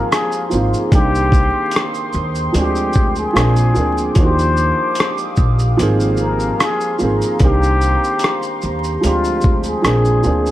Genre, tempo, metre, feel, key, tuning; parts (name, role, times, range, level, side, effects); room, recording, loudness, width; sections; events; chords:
lo-fi hip hop; 74 BPM; 4/4; swing 56% on 16ths; A4 = 443 Hz
trumpet with plunger mute; melody; 0.0-10.5 s; F4 to C5; -21 LUFS; left 3 dB; tape echo
dark upright piano; accompaniment; 0.0-10.5 s; Eb3 to Ab4; -20 LUFS; right 2 dB; cassette tape
deep dark ambient pad; sustained chords; 0.0-10.5 s; F5 to D6; -25 LUFS; equal; chorus, built-in reverb
dusty soul sampler-style drum kit; drums; 0.1-10.5 s; hi-hat, kick drum, rim click, shaker; -17 LUFS; equal
upright bass; bass; 0.5-10.5 s; Ab1 to Eb2; -18 LUFS; equal
light reverb, studio reverb; vinyl crackle; -13 LUFS; side -14 dB against mid
0.0-10.5 A section
0.0 Ab69; 0.9 Cm7; 2.5 Fm69/D; 3.4 Bb9; 4.2 Ebmaj9; 5.8 Ab69; 7.4 Cm7; 9.0 Fm69/D; 9.8 Bb9